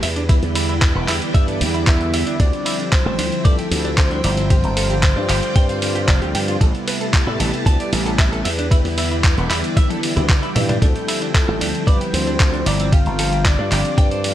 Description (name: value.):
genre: nu-disco, nu disco.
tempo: 114 BPM.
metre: 4/4.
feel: straight.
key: G mixolydian.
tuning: A4 = 440 Hz.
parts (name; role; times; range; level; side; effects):
string machine, full ensemble; sustained chords; 0.0-14.3 s; F3 to A5; -28 LUFS; equal; ensemble chorus, sidechain pumping.
direct-recorded clean electric guitar; riff; 0.0-14.2 s; A3 to A5; -28 LUFS; right 2 dB; lush chorus.
slap bass with an envelope filter; bass; 0.0-14.3 s; E1 to A2; -22 LUFS; equal; none.
dusty soul sampler-style drum kit; drums; 0.0-14.3 s; handclaps, hi-hat, ride cymbal, toms; -23 LUFS; right 1 dB; none.
mellow synth brass; accompaniment; 0.3-14.3 s; C3 to F4; -25 LUFS; equal; chorus, sidechain pumping.
electronic kick drum; drums; 0.3-14.1 s; none; -15 LUFS; equal; none.
soft octave-layered synth lead; melody; 1.9-6.3, 10.8-14.3 s; A4 to F5; -26 LUFS; left 2 dB; chorus, analog delay.
room: digital ambience.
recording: none.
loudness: -15 LUFS.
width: side -12 dB against mid.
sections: 0.0-14.3 A section.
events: drum fill 9.8-10.8.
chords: 0.0 Em7; 2.4 Dm11; 4.5 G7sus4; 6.6 Am9; 8.5 Em7; 10.8 Dm11; 12.9 G7sus4.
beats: | 0.29 0.82 1.35 1.87 | 2.40 2.92 3.45 3.98 | 4.50 5.03 5.56 6.08 | 6.61 7.14 7.66 8.19 | 8.71 9.24 9.77 10.29 | 10.82 11.35 11.87 12.40 | 12.93 13.45 13.98.